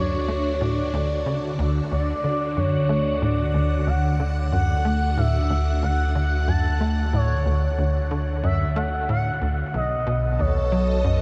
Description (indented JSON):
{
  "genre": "ambient, sequencer-driven space music",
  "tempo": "92 BPM",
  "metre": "4/4",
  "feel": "straight",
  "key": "D major",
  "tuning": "A4 = 440 Hz",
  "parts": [
    { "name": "expressive portamento lead", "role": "melody", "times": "0.0-11.2 s", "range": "C#5 to A5", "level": "-29 LUFS", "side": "equal", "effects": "subtle chorus, analog delay" },
    { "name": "phased string machine", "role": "sustained chords", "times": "0.0-11.2 s", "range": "B2 to F#5", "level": "-30 LUFS", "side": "equal", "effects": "ensemble chorus, phaser" },
    { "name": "tight sequencer bass", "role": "riff", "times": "0.0-11.2 s", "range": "B1 to A3", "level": "-28 LUFS", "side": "equal", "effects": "lush chorus, analog delay" },
    { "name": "round analog bass", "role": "bass", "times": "0.0-11.2 s", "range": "B1 to D2", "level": "-27 LUFS", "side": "equal", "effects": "none" }
  ],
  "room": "moderate huge ambient reverb, RT60 8.9 s",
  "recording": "dark, warm production, nothing above 10.9 kHz",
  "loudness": "-23 LUFS",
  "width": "mono",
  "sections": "0.0-11.2 A section",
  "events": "none",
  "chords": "0.0 Dmaj7; 9.7 B7"
}